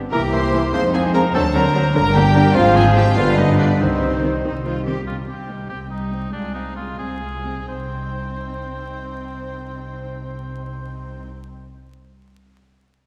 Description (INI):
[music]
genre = quick classical-period movement for symphony orchestra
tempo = 84-100 BPM (dotted quarters)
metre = 6/8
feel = rubato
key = C minor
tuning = A4 = 440 Hz
[part]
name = warm studio violin section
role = melody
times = 0.1-11.2 s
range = C5 to C6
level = -33 LUFS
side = equal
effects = none
[part]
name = clear cor anglais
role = second line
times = 0.1-11.2 s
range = C4 to C5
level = -31 LUFS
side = equal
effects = none
[part]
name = dark clarinet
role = second line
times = 0.1-4.9 s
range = Ab4 to C5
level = -32 LUFS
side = equal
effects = none
[part]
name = dark studio violin section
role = second line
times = 0.1-11.2 s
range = C4 to C5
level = -32 LUFS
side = equal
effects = none
[part]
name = mellow hollow silver concert flute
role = second line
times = 0.1-4.4 s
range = C5 to C6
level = -28 LUFS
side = equal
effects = none
[part]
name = rich studio viola section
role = accompaniment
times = 0.1-11.2 s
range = D3 to E4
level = -29 LUFS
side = equal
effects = none
[part]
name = warm bassoon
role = accompaniment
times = 0.1-4.9 s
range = D3 to F#3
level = -27 LUFS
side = equal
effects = none
[part]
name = dark French horn section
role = sustained chords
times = 0.1-4.8 s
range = F#3 to E4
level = -28 LUFS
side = equal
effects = none
[part]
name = warm trumpet section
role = stabs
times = 0.1-4.8 s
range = G4 to C5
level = -30 LUFS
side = equal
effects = none
[part]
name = rich studio double bass section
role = bass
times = 0.1-11.2 s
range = G1 to F2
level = -24 LUFS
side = equal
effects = none
[part]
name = warm studio cello section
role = bass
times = 0.1-11.2 s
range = C2 to G4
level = -31 LUFS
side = equal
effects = none
[sound]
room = wet scoring stage reverb, RT60 2.0 s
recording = heard from further back in the room, vinyl crackle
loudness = -18 LUFS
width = mono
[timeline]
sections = 0.0-5.1 A section; 5.1-7.7 B section; 7.7-10.5 C section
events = slowing down 4.4-7.7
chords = 0.1 C7; 0.7 Fm; 1.3 D7; 2.0 Gm; 2.6 Fm/Ab; 3.2 G; 3.8 Cm; 6.3 Fm/C; 7.7 Cm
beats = | 0.12 0.74 | 1.35 1.95 | 2.56 3.17 | 3.80 4.44 | 5.07 5.70 | 6.33 6.98 | 7.68 8.38 | 9.08 9.77